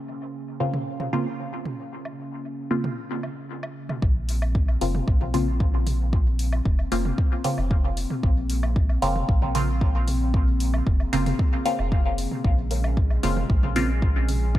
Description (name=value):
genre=dub techno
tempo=114 BPM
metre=4/4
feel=straight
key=Bb minor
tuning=A4 = 440 Hz
part: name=warbly tape-like pad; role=sustained chords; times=0.0-14.6 s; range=Db3 to Db4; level=-33 LUFS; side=left 1 dB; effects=chorus, built-in reverb, sidechain pumping
part: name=filtered dub chord stab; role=stabs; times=0.6-13.9 s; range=Db3 to F4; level=-28 LUFS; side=equal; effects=phaser, cassette tape, sidechain pumping, dub echo
part: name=electronic toms and woodblock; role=percussion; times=0.7-14.4 s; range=none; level=-36 LUFS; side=right 2 dB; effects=sidechain pumping on toms, sidechain pumping on perc, dub echo
part: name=soft dub sub bass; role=bass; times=4.0-14.6 s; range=F1 to Bb1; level=-25 LUFS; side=equal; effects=sidechain pumping
part: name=electronic kick drum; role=drums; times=4.0-14.6 s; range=none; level=-22 LUFS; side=equal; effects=none
part: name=electronic hi-hat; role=drums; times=4.3-14.4 s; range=none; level=-37 LUFS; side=left 2 dB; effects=none
part: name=filtered dub chord stab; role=riff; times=12.7-12.9 s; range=Bb4 to F5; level=-39 LUFS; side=left 2 dB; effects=phaser, wide subtle chorus, sidechain pumping, dub echo
room=digital ambience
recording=dark, warm production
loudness=-21 LUFS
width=side -14 dB against mid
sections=0.0-4.0 A section; 4.0-14.6 B section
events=filter sweep on ambient pad 0.0-4.0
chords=0.0 Bbmadd9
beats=0.34 0.86 1.39 | 1.92 2.44 2.97 3.50 | 4.02 4.55 5.08 5.60 | 6.13 6.66 7.18 7.71 | 8.23 8.76 9.29 9.81 | 10.34 10.87 11.39 11.92 | 12.44 12.97 13.50 14.02 | 14.55